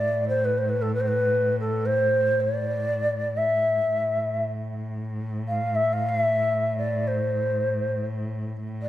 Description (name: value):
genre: Arabic maqam ensemble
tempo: free time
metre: none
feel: none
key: A minor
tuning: A4 = 440 Hz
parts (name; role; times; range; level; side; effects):
- mellow ney; melody; 0.0-8.9 s; A4 to F5; -23 LUFS; equal; none
- warm cello; drone; 0.0-8.9 s; A2; -28 LUFS; equal; none
room: wet concert hall reverb, RT60 1.6 s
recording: none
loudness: -22 LUFS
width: side -13 dB against mid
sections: 0.0-8.9 A section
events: none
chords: none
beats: free time